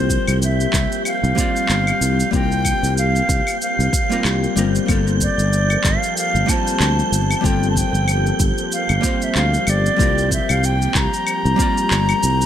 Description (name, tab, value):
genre	sunset chillout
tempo	94 BPM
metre	4/4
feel	swing 56% on 16ths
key	unclear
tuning	A4 = 440 Hz
part	bright baroque flute	melody	0.0-12.5 s	C5 to Bb5	-22 LUFS	equal	ping-pong delay, shimmer reverb
part	archtop guitar, miked and amplified	accompaniment	0.0-12.5 s	G3 to D5	-24 LUFS	moving between left 7 dB and right 6 dB	auto-pan, ping-pong delay
part	soft string machine	sustained chords	0.0-12.5 s	F3 to A4	-26 LUFS	equal	ensemble chorus
part	sustaining fretless electric bass	bass	0.0-12.4 s	G1 to D2	-19 LUFS	equal	none
part	wind-like tuned noise texture	texture	0.0-12.5 s	G6	-29 LUFS	right 6 dB	built-in reverb, shimmer reverb
part	electronic kick drum	drums	0.1-11.7 s	none	-22 LUFS	equal	none
part	electronic shaker, claves and handclaps	drums	0.1-12.5 s	none	-24 LUFS	equal	none
room	light reverb, digital ambience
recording	none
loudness	-15 LUFS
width	side -10 dB against mid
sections	0.0-12.5 A section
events	none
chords	0.0 C7sus4; 4.9 Gm11; 10.0 C7sus4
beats	0.42 1.06 1.70 | 2.33 2.97 3.61 4.25 | 4.89 5.52 6.16 6.80 | 7.44 8.08 8.72 9.35 | 9.99 10.63 11.27 11.91